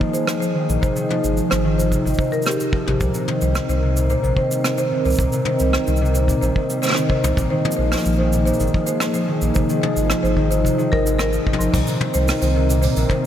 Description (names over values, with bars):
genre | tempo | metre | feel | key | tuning
folktronica | 110 BPM | 4/4 | straight | C minor | A4 = 440 Hz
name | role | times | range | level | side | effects
warbly tape-like pad | sustained chords | 0.0-13.3 s | Eb3 to Bb4 | -25 LUFS | right 2 dB | chorus, built-in reverb
concert harp | arpeggios | 0.0-13.3 s | Bb2 to Ab3 | -21 LUFS | left 2 dB | vintage 12-bit sampler grit, tape echo
kick drum | drums | 0.0-13.2 s | none | -21 LUFS | equal | none
marimba with medium hard mallets | second line | 0.1-13.2 s | G4 to C6 | -26 LUFS | right 2 dB | tape echo
jazz brush drum kit | drums | 0.1-13.2 s | crash cymbal, hi-hat, rim click, shaker, toms | -27 LUFS | equal | none
warm sub bass | bass | 0.7-13.0 s | Ab1 to C2 | -21 LUFS | equal | none
room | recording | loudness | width
moderate huge ambient reverb, RT60 4.5 s | dreamy mix soaked in reverb | -17 LUFS | side -10 dB against mid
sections
0.0-11.7 A section; 11.7-13.3 B section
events
none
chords
0.0 Bb7sus4; 0.8 Fm7/Ab; 3.0 Cm7; 7.4 Fm7/Ab; 11.7 Cm7